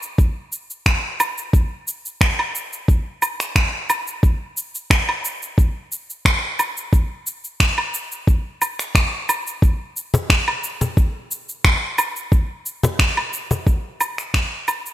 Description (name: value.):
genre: downtempo.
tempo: 89 BPM.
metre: 4/4.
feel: straight.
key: none.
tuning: none.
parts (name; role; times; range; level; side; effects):
electronic shaker, finger snaps and woodblock; drums; 0.0-14.9 s; none; -20 LUFS; equal; overdrive, small room reverb.
electronic kick drum; drums; 0.2-14.5 s; none; -16 LUFS; equal; small room reverb.
cajon; percussion; 10.1-13.6 s; none; -22 LUFS; left 2 dB; none.
room: light reverb, digital ambience.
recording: bright 1980s-style digital production.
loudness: -18 LUFS.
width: side -13 dB against mid.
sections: 0.0-14.9 A section.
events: fade-out 13.2-14.9.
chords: none.